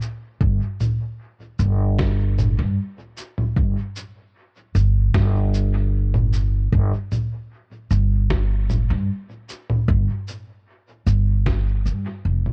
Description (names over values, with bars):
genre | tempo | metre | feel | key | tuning
ambient dub | 76 BPM | 4/4 | straight | unclear | A4 = 441 Hz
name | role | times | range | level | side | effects
electronic shaker, congas and snare drum | drums | 0.0-12.5 s | none | -28 LUFS | equal | dub echo
upright bass | bass | 0.4-12.4 s | F1 to G2 | -21 LUFS | equal | tube saturation
electronic kick drum | drums | 0.4-11.6 s | none | -25 LUFS | equal | none
room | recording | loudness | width
little or no reverb | home recording on cassette | -21 LUFS | mono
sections
0.0-12.5 A section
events
fade-out 10.9-12.5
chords
none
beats
| 0.41 1.20 1.99 2.78 | 3.57 4.36 5.15 5.94 | 6.72 7.51 8.30 9.09 | 9.88 10.67 11.46 12.25